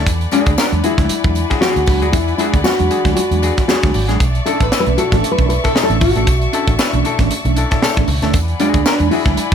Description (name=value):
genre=funk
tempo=116 BPM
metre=4/4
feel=swing 56% on 16ths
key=unclear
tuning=A4 = 441 Hz
part: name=hollow-body jazz guitar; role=accompaniment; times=0.0-9.5 s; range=D4 to B4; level=-22 LUFS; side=left 6 dB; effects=none
part: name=warm studio string section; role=sustained chords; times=0.0-9.5 s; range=D5 to C#6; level=-25 LUFS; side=left 3 dB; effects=none
part: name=vintage muted fingered electric bass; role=bass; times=0.0-9.5 s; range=G#1 to E2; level=-18 LUFS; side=equal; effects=none
part: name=mellow tine electric piano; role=stabs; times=0.1-9.5 s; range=B2 to D4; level=-23 LUFS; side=right 5 dB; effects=medium stereo tremolo
part: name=tight funk drum kit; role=drums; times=0.1-9.5 s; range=hi-hat, kick drum, snare drum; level=-18 LUFS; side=right 1 dB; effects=none
part: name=tambourine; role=percussion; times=0.1-9.5 s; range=none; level=-31 LUFS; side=left 7 dB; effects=none
part: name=nylon-string guitar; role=melody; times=0.3-9.5 s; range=D4 to B4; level=-18 LUFS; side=left 1 dB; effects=none
room=light reverb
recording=none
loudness=-13 LUFS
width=side -8 dB against mid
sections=0.0-9.5 A section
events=none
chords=0.1 E9; 4.2 Bm11; 8.3 E9